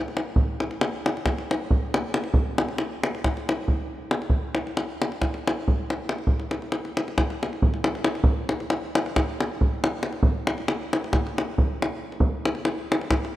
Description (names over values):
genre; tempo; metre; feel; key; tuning
balkan folk; 274 BPM (eighths); 9/8; straight; none; none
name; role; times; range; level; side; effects
davul; percussion; 0.1-13.3 s; none; -23 LUFS; equal; none
room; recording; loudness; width
moderate lush hall reverb, RT60 2.8 s; rough home demo mix; -23 LUFS; side -15 dB against mid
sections
0.4-13.4 A section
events
none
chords
none